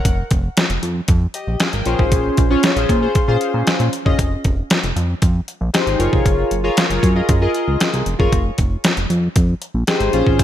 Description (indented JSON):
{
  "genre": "early-eighties boogie funk",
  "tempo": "116 BPM",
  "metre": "4/4",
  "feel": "straight",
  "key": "F phrygian",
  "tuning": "A4 = 440 Hz",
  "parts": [
    { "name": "chorused polysynth", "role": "accompaniment", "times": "0.0-10.4 s", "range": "Db4 to G5", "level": "-19 LUFS", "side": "left 2 dB", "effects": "none" },
    { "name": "fat analog bass", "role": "bass", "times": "0.1-10.4 s", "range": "F1 to Bb2", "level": "-19 LUFS", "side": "equal", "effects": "none" },
    { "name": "detuned 8-bit digital drum machine", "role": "drums", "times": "0.1-10.4 s", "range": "hi-hat, kick drum, snare drum", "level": "-18 LUFS", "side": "equal", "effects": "overdrive" }
  ],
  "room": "light reverb",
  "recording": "bright 1980s-style digital production",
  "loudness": "-15 LUFS",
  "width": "side -11 dB against mid",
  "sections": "0.0-10.4 A section",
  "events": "none",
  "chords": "0.0 Fm; 1.9 Bbm7; 4.2 Fm9; 6.0 Gbmaj7; 8.3 Fm9"
}